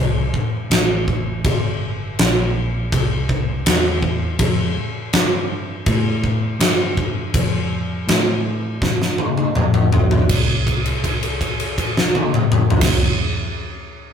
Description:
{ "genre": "blues rock power trio and southern rock", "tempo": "81 BPM", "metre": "4/4", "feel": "straight", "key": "unclear", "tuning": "A4 = 441 Hz", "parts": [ { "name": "vintage muted picked electric bass", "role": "bass", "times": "0.0-13.1 s", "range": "G1 to A2", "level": "-23 LUFS", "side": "right 1 dB", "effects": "none" }, { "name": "huge arena drum kit", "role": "drums", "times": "0.3-13.0 s", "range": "crash cymbal, kick drum, snare drum, toms", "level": "-17 LUFS", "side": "left 1 dB", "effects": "none" } ], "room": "light reverb", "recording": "rough rehearsal-room recording, tube saturation", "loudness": "-16 LUFS", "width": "side -7 dB against mid", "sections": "0.0-10.3 A section; 10.3-13.3 B section", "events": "drum fill 8.8-10.3; held note 10.3-12.8", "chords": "none" }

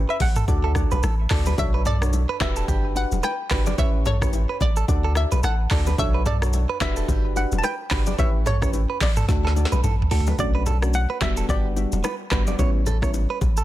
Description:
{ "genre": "afrobeats", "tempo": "109 BPM", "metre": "4/4", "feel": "swing 58% on 16ths", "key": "unclear", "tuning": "A4 = 442 Hz", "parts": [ { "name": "hollow square pluck", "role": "melody", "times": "0.0-12.3 s", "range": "C#5 to A5", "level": "-30 LUFS", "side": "left 1 dB", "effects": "chorus, ping-pong delay" }, { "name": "punchy sub bass", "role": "bass", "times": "0.0-13.6 s", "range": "E1 to D2", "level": "-23 LUFS", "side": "equal", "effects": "none" }, { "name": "direct-recorded clean electric guitar", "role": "riff", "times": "0.1-13.6 s", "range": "G4 to D5", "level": "-30 LUFS", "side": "right 7 dB", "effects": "spring reverb, ping-pong delay" }, { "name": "afro-pop drum kit", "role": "drums", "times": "0.2-13.6 s", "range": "handclaps, hi-hat, kick drum, rim click, shaker, snare drum, toms", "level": "-24 LUFS", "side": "equal", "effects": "none" }, { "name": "bongos and congas", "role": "percussion", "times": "0.2-13.6 s", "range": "none", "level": "-33 LUFS", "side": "left 6 dB", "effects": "none" }, { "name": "soft electric-piano-like synth keys", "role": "accompaniment", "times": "0.5-13.2 s", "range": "G3 to D5", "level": "-30 LUFS", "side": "equal", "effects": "chorus" } ], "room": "little or no reverb", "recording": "dense, heavily limited modern master", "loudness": "-19 LUFS", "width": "side -14 dB against mid", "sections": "0.0-10.4 A section; 10.4-13.6 B section", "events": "drum fill 9.3-10.4", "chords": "0.5 D; 1.6 Bm7; 2.4 Em7; 3.8 A7; 4.9 D; 6.0 Bm7; 6.8 Em7; 8.2 A7; 9.3 D; 10.4 Bm7; 11.2 Em7; 12.6 A7" }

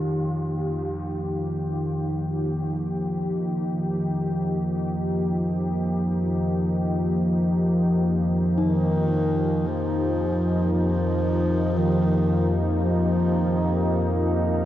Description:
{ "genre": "dark ambient drone", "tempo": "free time", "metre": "none", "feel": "none", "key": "unclear", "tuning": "A4 = 440 Hz", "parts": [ { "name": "deep dark ambient pad", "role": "sustained chords", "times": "0.0-14.7 s", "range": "F3 to G4", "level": "-28 LUFS", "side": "equal", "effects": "chorus, built-in reverb" }, { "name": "bronze singing bowl", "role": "arpeggios", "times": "0.0-3.7 s", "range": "Eb3 to Eb4", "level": "-31 LUFS", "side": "equal", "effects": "tape echo" }, { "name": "deep rumbling drone", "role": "drone", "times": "0.0-14.7 s", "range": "F2 to F3", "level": "-24 LUFS", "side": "equal", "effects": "built-in reverb" }, { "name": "bronze singing bowl", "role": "texture", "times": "0.0-14.7 s", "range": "Eb4 to F4", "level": "-33 LUFS", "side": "left 6 dB", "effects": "none" }, { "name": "dark bass clarinet", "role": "melody", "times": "8.6-14.4 s", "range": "Eb3 to F3", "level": "-26 LUFS", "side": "equal", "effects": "tape echo" } ], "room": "moderate huge ambient reverb, RT60 8.9 s", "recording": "worn, warbling old tape, cassette tape, warbly pitch drift", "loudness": "-21 LUFS", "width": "side -12 dB against mid", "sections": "0.0-14.7 A section", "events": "fade-in on ambient pad 0.0-14.7", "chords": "0.0 Fsus2" }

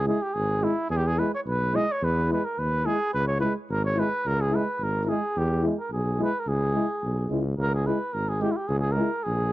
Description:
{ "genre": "balkan folk, Balkan brass band", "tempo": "108 BPM", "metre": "2/4", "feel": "swing 53% on 16ths", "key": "C# dorian sharp4", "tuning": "A4 = 440 Hz", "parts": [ { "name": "mellow cornet", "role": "melody", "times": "0.0-9.5 s", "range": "E4 to D#5", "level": "-27 LUFS", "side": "right 1 dB", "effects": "none" }, { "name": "mellow tuba", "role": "bass", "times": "0.0-9.5 s", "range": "G#1 to E2", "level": "-26 LUFS", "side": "equal", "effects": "transformer saturation" }, { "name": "warm euphonium", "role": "accompaniment", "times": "0.1-9.1 s", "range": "E4", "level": "-30 LUFS", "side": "left 5 dB", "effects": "none" }, { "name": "warm euphonium", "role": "accompaniment", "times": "0.1-9.1 s", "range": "G#3", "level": "-30 LUFS", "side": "right 4 dB", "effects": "none" } ], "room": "studio ambience", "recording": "dry, close 1970s-style studio recording", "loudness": "-23 LUFS", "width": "side -16 dB against mid", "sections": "0.0-7.6 A section; 7.6-9.5 B section", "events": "none", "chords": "0.0 C#m (rootless); 0.9 E; 3.1 C#m; 5.4 E; 6.5 C#m" }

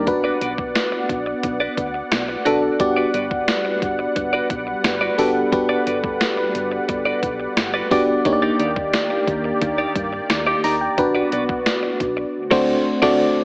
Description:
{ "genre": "1980s-style pop", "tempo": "88 BPM", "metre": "4/4", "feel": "straight", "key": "G major", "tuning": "A4 = 439 Hz", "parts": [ { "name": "FM electric piano with auto-pan", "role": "accompaniment", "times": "0.0-13.4 s", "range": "A3 to D6", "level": "-20 LUFS", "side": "equal", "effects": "none" }, { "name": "warm analog pad", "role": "sustained chords", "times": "0.0-13.4 s", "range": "D3 to F#5", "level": "-25 LUFS", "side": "equal", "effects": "chorus" }, { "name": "solid FM bass", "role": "bass", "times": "0.0-13.3 s", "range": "G1 to G2", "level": "-32 LUFS", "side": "equal", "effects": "none" }, { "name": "direct-recorded clean electric guitar", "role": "riff", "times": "0.1-13.3 s", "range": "Eb4 to D5", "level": "-25 LUFS", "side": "right 1 dB", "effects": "wide subtle chorus, tape echo" }, { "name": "clean 12-bit digital drum machine", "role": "drums", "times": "0.1-13.2 s", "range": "crash cymbal, hi-hat, kick drum, snare drum, tambourine", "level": "-23 LUFS", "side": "equal", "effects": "overdrive, gated reverb" } ], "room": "moderate plate reverb, RT60 2.0 s", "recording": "AM radio sound", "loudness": "-17 LUFS", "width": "side -28 dB against mid", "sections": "0.0-13.4 A section", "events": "band accent 12.3-13.4", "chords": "0.1 Bm; 2.8 Gmaj7; 8.3 Ebmaj7; 11.0 Bm; 12.3 D7" }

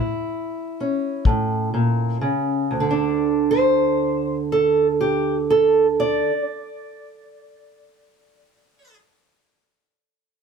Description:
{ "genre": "acoustic country blues, solo or duo", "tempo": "40-47 BPM (dotted quarters)", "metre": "12/8", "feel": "straight", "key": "unclear", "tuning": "A4 = 439 Hz", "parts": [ { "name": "fingerpicked steel-string acoustic guitar", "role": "melody", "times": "0.0-9.0 s", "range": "D2 to D5", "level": "-18 LUFS", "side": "right 2 dB", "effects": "plate reverb" }, { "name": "kick drum", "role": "drums", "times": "1.3-1.5 s", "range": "none", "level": "-20 LUFS", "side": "left 3 dB", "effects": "none" } ], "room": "wet booth ambience, RT60 0.2 s", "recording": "none", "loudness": "-18 LUFS", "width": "side -6 dB against mid", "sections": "0.0-2.7 A section; 2.7-8.7 B section", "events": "slowing down 0.0-2.7", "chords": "0.0 A; 2.7 N.C." }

